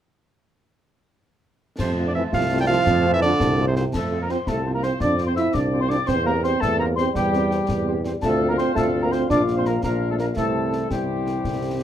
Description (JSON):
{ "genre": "military-style march for wind band", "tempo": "112 BPM (dotted quarters)", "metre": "6/8", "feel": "straight", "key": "F major", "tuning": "A4 = 440 Hz", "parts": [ { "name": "warm cornet", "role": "melody", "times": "1.8-11.8 s", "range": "C5 to G5", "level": "-28 LUFS", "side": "right 1 dB", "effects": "none" }, { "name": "warm euphonium", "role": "second line", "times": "1.8-11.8 s", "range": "C3 to E4", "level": "-24 LUFS", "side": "right 3 dB", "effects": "none" }, { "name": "warm woodwind section", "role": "second line", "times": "1.8-11.8 s", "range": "F4 to A5", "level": "-31 LUFS", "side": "left 2 dB", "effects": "none" }, { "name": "dark trombone section", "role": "sustained chords", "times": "1.8-11.8 s", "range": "E3 to C4", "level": "-32 LUFS", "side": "left 2 dB", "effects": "none" }, { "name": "clear tuba", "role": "bass", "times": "1.8-11.8 s", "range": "Bb1 to F2", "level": "-25 LUFS", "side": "right 2 dB", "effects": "none" }, { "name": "concert snare drum, clash cymbals and concert bass drum", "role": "drums", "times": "1.8-11.8 s", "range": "none", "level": "-30 LUFS", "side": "left 1 dB", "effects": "none" }, { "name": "dark French horn section", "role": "accompaniment", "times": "2.0-11.8 s", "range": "G3 to G4", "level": "-28 LUFS", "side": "left 2 dB", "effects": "none" }, { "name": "mellow wooden piccolo", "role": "second line", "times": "3.9-11.8 s", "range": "G5 to E6", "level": "-29 LUFS", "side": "left 4 dB", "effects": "none" } ], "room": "moderate small room reverb, RT60 0.5 s", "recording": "none", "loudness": "-19 LUFS", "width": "side -10 dB against mid", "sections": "1.8-3.9 A section; 3.9-11.8 B section", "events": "none", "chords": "1.8 F; 3.9 F5; 6.1 C/E; 8.2 Dm7; 9.3 Bb; 10.4 C" }